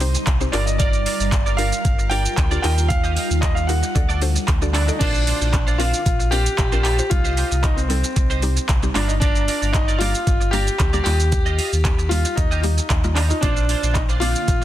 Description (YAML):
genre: dance-pop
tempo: 114 BPM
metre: 4/4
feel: straight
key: unclear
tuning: A4 = 441 Hz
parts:
  - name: warm concert grand piano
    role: melody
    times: 0.0-14.6 s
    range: C4 to G5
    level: -24 LUFS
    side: left 1 dB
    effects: ping-pong delay
  - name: mallet-like synth pluck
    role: accompaniment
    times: 0.0-14.5 s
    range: G3 to D5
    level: -30 LUFS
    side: left 2 dB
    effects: chorus, sidechain pumping
  - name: ethereal airy pad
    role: sustained chords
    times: 0.0-5.0, 14.4-14.6 s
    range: C3 to Bb4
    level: -30 LUFS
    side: equal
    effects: ensemble chorus, built-in reverb, phaser, sidechain pumping
  - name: twelve-string electric guitar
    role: riff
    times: 0.0-14.6 s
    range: D4 to Eb5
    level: -29 LUFS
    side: right 5 dB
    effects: ensemble chorus
  - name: sub bass with octave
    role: bass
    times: 0.0-14.6 s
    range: G1 to Eb2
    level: -21 LUFS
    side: equal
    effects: sidechain pumping
  - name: smooth R&B drum kit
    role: drums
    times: 0.0-14.6 s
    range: crash cymbal, handclaps, hi-hat, kick drum, shaker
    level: -21 LUFS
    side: equal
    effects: none
room: little or no reverb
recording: dense, heavily limited modern master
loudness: -17 LUFS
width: side -13 dB against mid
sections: 0.0-5.0 A section; 5.0-14.6 A section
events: none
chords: 0.0 Cm; 0.5 Gm7; 2.6 Ebadd9; 4.0 D; 5.0 Bbadd9; 7.1 Cm; 9.0 Gm7; 11.1 Ebadd9; 13.4 Bbadd9